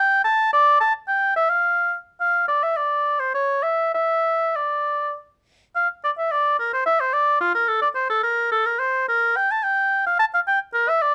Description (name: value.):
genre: classical, baroque-style fantasia for unaccompanied oboe.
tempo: 96-111 BPM.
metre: 3/4.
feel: rubato.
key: D minor.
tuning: A4 = 439 Hz.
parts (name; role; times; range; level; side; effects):
warm oboe; solo; 0.0-11.1 s; F4 to A5; -20 LUFS; equal; none.
room: light reverb.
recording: dark, warm production.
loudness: -21 LUFS.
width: mono.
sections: 0.0-5.8 A section; 5.8-11.1 A section.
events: none.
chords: none.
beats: | 0.53 1.09 1.64 | 2.20 2.76 3.33 | 3.94 4.55 5.16 | 5.76 6.31 6.86 | 7.41 7.96 8.52 | 9.10 9.65 10.20 | 10.74.